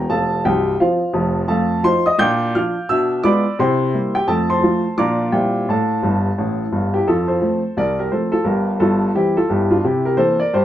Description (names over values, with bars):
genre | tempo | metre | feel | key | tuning
jazz, stride piano | 173 BPM | 4/4 | swing 61% on 8ths | F major | A4 = 441 Hz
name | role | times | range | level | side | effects
warm upright piano | solo | 0.0-10.6 s | C1 to G6 | -15 LUFS | equal | none
room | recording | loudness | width
wet small room reverb, RT60 0.5 s | band playing live in one room | -15 LUFS | side -12 dB against mid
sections
0.0-7.1 A section; 7.1-10.6 A section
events
upright piano fill 6.0-7.1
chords
0.1 F; 1.5 F7; 2.2 Bb; 2.9 Bdim7; 3.6 C7; 4.3 F; 5.0 Bb; 5.3 C7/Bb; 5.7 F; 8.4 C7/G; 9.8 C7